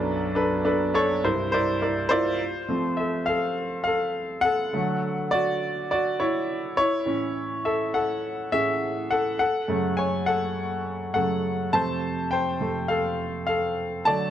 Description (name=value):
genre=pop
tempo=103 BPM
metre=4/4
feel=straight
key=unclear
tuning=A4 = 439 Hz
part: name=clear grand piano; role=solo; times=0.0-14.3 s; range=B1 to A5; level=-23 LUFS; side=equal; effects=none
room=moderate plate reverb, RT60 2.3 s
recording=worn, warbling old tape, cassette tape, warbly pitch drift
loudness=-23 LUFS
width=side -10 dB against mid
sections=0.0-2.4 A section; 2.4-14.3 B section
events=grand piano solo 2.4-14.3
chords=0.0 Bm7; 1.2 C7; 2.4 F; 4.7 D; 6.8 A; 9.4 F#m; 11.7 F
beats=| 0.07 0.65 1.23 1.82 | 2.40 2.98 3.57 4.15 | 4.73 5.32 5.90 6.48 | 7.07 7.65 8.23 8.82 | 9.40 9.99 10.57 11.15 | 11.73 12.32 12.90 13.48 | 14.06